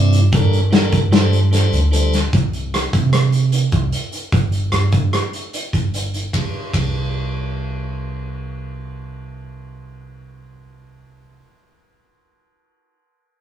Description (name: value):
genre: progressive instrumental, band music in an uneven meter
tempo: 150 BPM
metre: 5/4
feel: straight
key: unclear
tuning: A4 = 439 Hz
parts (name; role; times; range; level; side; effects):
- tonewheel organ; accompaniment; 0.0-2.2 s; C3 to D5; -21 LUFS; equal; overdrive, stopped rotary speaker
- upright bass; bass; 0.0-11.4 s; G1 to C3; -19 LUFS; right 1 dB; none
- loose indie drum kit; drums; 0.1-6.8 s; hi-hat, kick drum, ride cymbal, rim click, snare drum; -19 LUFS; equal; none
room: wet booth ambience, RT60 0.2 s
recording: rough rehearsal-room recording, tube saturation, studio ambience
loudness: -16 LUFS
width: side -10 dB against mid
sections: 0.0-2.3 A section; 2.3-6.3 B section; 6.3-10.3 C section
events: none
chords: 0.3 Gmadd9; 2.3 N.C.